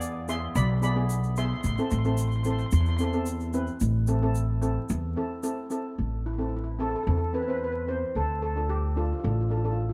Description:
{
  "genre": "calypso",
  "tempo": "111 BPM",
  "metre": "4/4",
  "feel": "straight",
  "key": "A minor",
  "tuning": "A4 = 440 Hz",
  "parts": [
    { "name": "steel pan", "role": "melody", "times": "0.0-9.9 s", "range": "E4 to C6", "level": "-35 LUFS", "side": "equal", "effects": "none" },
    { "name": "steel pan", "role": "accompaniment", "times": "0.0-9.9 s", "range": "B3 to C5", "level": "-34 LUFS", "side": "equal", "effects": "none" },
    { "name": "upright bass", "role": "bass", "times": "0.0-9.9 s", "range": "A1 to E2", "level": "-29 LUFS", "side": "equal", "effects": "none" },
    { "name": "egg shaker", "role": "percussion", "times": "0.0-5.8 s", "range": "none", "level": "-45 LUFS", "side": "equal", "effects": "none" }
  ],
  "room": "moderate spring reverb, RT60 2.4 s",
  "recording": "heard from further back in the room, vinyl crackle",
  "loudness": "-28 LUFS",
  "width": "mono",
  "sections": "0.0-3.8 A section; 3.8-6.0 B section; 6.0-9.9 C section",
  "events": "none",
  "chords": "0.0 E7; 1.6 Am; 8.2 Dm"
}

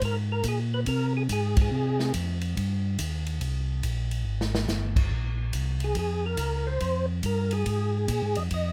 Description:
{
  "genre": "soul jazz organ trio",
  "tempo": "141 BPM",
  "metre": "4/4",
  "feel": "swing 64% on 8ths",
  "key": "unclear",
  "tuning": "A4 = 439 Hz",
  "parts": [
    { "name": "percussive tonewheel organ", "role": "melody", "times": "0.0-2.1, 5.8-8.7 s", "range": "Ab4 to Eb5", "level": "-32 LUFS", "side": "equal", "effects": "slow rotary speaker, chorus vibrato" },
    { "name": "mellow tonewheel organ", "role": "bass", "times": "0.0-8.7 s", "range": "G1 to C3", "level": "-30 LUFS", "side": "equal", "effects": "chorus vibrato, slow rotary speaker" },
    { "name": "swinging big-band drum kit", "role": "drums", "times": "0.0-8.6 s", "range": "crash cymbal, hi-hat, kick drum, ride cymbal, snare drum", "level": "-34 LUFS", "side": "equal", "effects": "none" }
  ],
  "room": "little or no reverb",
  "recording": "none",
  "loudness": "-28 LUFS",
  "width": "mono",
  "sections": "0.0-8.7 A section",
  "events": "band accent 1.5; drum fill 4.3-4.7",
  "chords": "0.0 Fm9; 5.1 Bbm9"
}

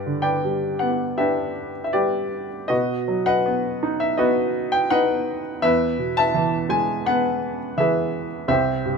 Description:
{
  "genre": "classical, lyrical solo piano",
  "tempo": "78-85 BPM",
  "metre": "4/4",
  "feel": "rubato",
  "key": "unclear",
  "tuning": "A4 = 440 Hz",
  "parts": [
    { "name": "clear baby grand piano", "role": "solo", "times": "0.0-9.0 s", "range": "C2 to A5", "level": "-20 LUFS", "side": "equal", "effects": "none" }
  ],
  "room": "little or no reverb",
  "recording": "close, detailed microphones",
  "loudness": "-20 LUFS",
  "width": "side -5 dB against mid",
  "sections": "0.0-9.0 A section",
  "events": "none",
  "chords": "0.0 G; 2.7 B; 5.6 E"
}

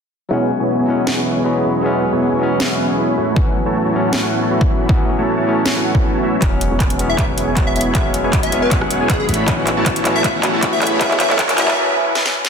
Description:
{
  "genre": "future bass",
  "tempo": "157 BPM",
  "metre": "4/4",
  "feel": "half-time",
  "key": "E major",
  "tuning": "A4 = 444 Hz",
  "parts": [
    { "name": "barky tine electric piano", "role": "accompaniment", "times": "0.3-12.5 s", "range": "E3 to F#4", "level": "-21 LUFS", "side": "left 3 dB", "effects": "sidechain pumping, digital delay" },
    { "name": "ethereal airy pad", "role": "sustained chords", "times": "0.8-11.7 s", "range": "E2 to A5", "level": "-28 LUFS", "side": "right 2 dB", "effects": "ensemble chorus, built-in reverb, sidechain pumping" },
    { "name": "dense compressed supersaw", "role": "riff", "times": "0.3-11.8 s", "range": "A3 to B5", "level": "-20 LUFS", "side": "right 1 dB", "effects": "cassette tape, sidechain pumping, low-pass filter, digital delay" },
    { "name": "trap drum kit", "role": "drums", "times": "1.1-12.5 s", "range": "handclaps, hi-hat, rim click, snare drum", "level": "-20 LUFS", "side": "equal", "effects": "studio reverb" },
    { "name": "electronic kick drum", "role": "drums", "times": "3.4-11.5 s", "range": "none", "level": "-18 LUFS", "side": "equal", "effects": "overdrive, studio reverb" },
    { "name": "long sustained 808-style bass", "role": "bass", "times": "6.4-11.8 s", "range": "E1 to A1", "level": "-26 LUFS", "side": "equal", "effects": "tube saturation, sidechain pumping" },
    { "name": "riser and swell", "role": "sound effects", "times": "8.2-12.5 s", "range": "none", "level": "-26 LUFS", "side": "right 1 dB", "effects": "none" },
    { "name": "plucky unison lead", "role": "melody", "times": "7.1-11.8 s", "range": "G#4 to E5", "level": "-22 LUFS", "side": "left 1 dB", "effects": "analog chorus, sidechain pumping, digital delay" }
  ],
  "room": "moderate lush hall reverb, RT60 2.0 s",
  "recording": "dense, heavily limited modern master, high-pass filter",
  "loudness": "-14 LUFS",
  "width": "side -6 dB against mid",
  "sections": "0.3-6.4 A section; 6.4-12.5 B section",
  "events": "kick drops out 6.0-6.4; build-up 6.4-12.5; drum fill 6.4-11.8, 12.2-12.5; filter sweep on supersaw synth 6.4-12.5; filter sweep 6.4-12.5; break 11.8-12.5; swell 11.8-12.5",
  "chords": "0.3 E69; 3.2 A6; 6.4 E69; 9.3 A6"
}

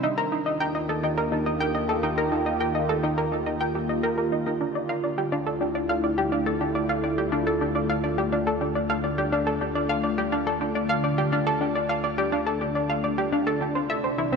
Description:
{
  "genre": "ambient, sequencer-driven space music",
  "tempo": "105 BPM",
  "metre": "4/4",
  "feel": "straight",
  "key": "D minor",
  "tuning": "A4 = 438 Hz",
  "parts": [
    { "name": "sweeping resonant pad", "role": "sustained chords", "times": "0.0-14.4 s", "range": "C3 to G4", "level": "-27 LUFS", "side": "equal", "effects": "lush chorus, shimmer reverb" },
    { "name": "analog pluck", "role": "riff", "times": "0.0-14.4 s", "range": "C4 to G5", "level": "-25 LUFS", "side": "equal", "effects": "chorus, tape echo, shimmer reverb" },
    { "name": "analog drone", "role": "bass", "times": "0.5-14.4 s", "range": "C2 to Eb2", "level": "-36 LUFS", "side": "equal", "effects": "chorus, tube saturation" }
  ],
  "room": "wet plate reverb, RT60 2.9 s",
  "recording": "echo-heavy mix, lossy compression artefacts",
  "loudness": "-23 LUFS",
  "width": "side -5 dB against mid",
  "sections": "0.0-14.4 A section",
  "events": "none",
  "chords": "0.0 Eb; 4.6 Dmadd9; 13.8 Cadd9"
}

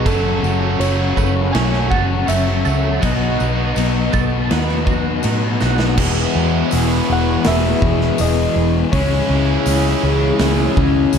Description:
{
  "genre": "rock, shoegaze and dream pop",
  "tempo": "81 BPM",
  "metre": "4/4",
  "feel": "straight",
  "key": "E major",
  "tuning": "A4 = 439 Hz",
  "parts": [
    { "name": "soft struck synth lead", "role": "melody", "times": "0.0-11.2 s", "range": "G#4 to G#5", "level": "-24 LUFS", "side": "equal", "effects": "chorus, tape echo" },
    { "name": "dark analog pad", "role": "sustained chords", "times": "0.0-11.2 s", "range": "E4 to D#6", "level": "-28 LUFS", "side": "right 2 dB", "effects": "chorus, phaser" },
    { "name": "twelve-string electric guitar", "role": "arpeggios", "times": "0.0-6.0 s", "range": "F#4 to C#5", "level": "-29 LUFS", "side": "right 16 dB", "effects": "ensemble chorus, tape echo" },
    { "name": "biting overdriven guitar", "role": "riff", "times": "0.0-11.2 s", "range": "E2 to F#4", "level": "-25 LUFS", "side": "right 13 dB", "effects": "reverse reverb" },
    { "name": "raw garage guitar", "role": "riff", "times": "0.0-11.2 s", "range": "F#2 to G#4", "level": "-21 LUFS", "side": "left 13 dB", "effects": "overdrive, wide subtle chorus" },
    { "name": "tight distorted guitar", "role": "riff", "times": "0.0-11.2 s", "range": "E2 to C#4", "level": "-24 LUFS", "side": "left 1 dB", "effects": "distortion" },
    { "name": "vintage muted fingered electric bass", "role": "bass", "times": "0.0-11.2 s", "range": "E1 to A2", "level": "-19 LUFS", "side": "right 1 dB", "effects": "none" },
    { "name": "big rock drum kit", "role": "drums", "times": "0.1-11.2 s", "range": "crash cymbal, hi-hat, kick drum, snare drum", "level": "-23 LUFS", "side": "right 1 dB", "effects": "none" },
    { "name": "tambourine", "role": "percussion", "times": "0.1-11.2 s", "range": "none", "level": "-35 LUFS", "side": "left 16 dB", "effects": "none" }
  ],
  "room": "small room reverb",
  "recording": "dark, warm production",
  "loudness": "-14 LUFS",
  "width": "side -7 dB against mid",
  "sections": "0.0-6.0 A section; 6.0-11.2 B section",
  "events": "drum fill 5.6-6.0",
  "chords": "0.1 F#m; 3.0 Badd9; 6.0 E6; 8.9 C#madd9"
}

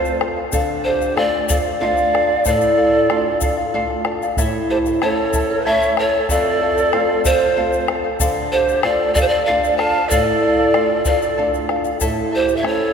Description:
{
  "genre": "andean folk, Andean ensemble",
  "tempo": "94 BPM",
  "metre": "3/4",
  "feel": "straight",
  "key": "D minor",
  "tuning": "A4 = 440 Hz",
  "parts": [
    { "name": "breathy pan flute", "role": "melody", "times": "0.0-12.9 s", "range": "C5 to A5", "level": "-19 LUFS", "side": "equal", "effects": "none" },
    { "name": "breathy bright large quena", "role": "second line", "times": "0.0-12.9 s", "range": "F4 to F5", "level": "-23 LUFS", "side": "right 3 dB", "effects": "none" },
    { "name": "charango", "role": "accompaniment", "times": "0.0-12.9 s", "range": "E4 to A5", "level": "-23 LUFS", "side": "left 2 dB", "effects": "none" },
    { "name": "flamenco guitar", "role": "accompaniment", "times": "0.0-12.9 s", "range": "F2 to F4", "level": "-24 LUFS", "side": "right 1 dB", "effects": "none" },
    { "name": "egg shaker", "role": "percussion", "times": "0.1-12.6 s", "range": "none", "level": "-29 LUFS", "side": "left 8 dB", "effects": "none" },
    { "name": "bombo", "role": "percussion", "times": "0.2-12.8 s", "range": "none", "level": "-25 LUFS", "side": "left 1 dB", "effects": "none" }
  ],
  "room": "wet cathedral reverb, RT60 4.6 s",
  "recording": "recorded in a church or concert hall",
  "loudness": "-15 LUFS",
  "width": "side -6 dB against mid",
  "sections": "0.0-4.4 A section; 4.4-12.9 A section",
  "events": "none",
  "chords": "0.0 F; 0.5 Dm; 4.4 A; 6.3 F; 8.2 Dm; 12.0 A"
}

